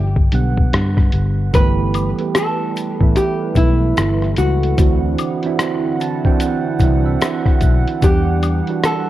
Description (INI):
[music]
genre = lo-fi hip hop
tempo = 74 BPM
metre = 4/4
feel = swing 62% on 16ths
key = G major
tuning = A4 = 438 Hz
[part]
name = hollow-body jazz guitar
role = melody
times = 0.0-9.1 s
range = E4 to B4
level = -21 LUFS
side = equal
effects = low-pass filter, cassette tape
[part]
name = vintage muted fingered electric bass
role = bass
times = 0.0-8.6 s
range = G1 to G2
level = -18 LUFS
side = left 1 dB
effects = none
[part]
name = lo-fi sampler-style drum kit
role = drums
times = 0.2-9.1 s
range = hi-hat, kick drum, rim click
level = -17 LUFS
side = left 1 dB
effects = vintage 12-bit sampler grit, cassette tape
[part]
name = soft electric-piano-like synth keys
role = accompaniment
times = 0.3-9.1 s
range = D3 to A5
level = -21 LUFS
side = right 6 dB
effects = chorus, cassette tape, low-pass filter
[part]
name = hollow soft pad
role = sustained chords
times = 1.5-9.1 s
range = D3 to F#5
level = -26 LUFS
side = equal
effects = chorus, low-pass filter, cassette tape
[part]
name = tube shaker and woodblock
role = percussion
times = 1.5-9.1 s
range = none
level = -32 LUFS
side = left 11 dB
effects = none
[sound]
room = light reverb, digital ambience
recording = home recording on cassette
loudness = -14 LUFS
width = side -14 dB against mid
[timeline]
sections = 0.0-1.5 A section; 1.5-9.1 B section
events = synth keys fill 5.6-8.0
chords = 0.0 Gmaj7; 1.5 G69; 4.8 D9; 8.0 Em9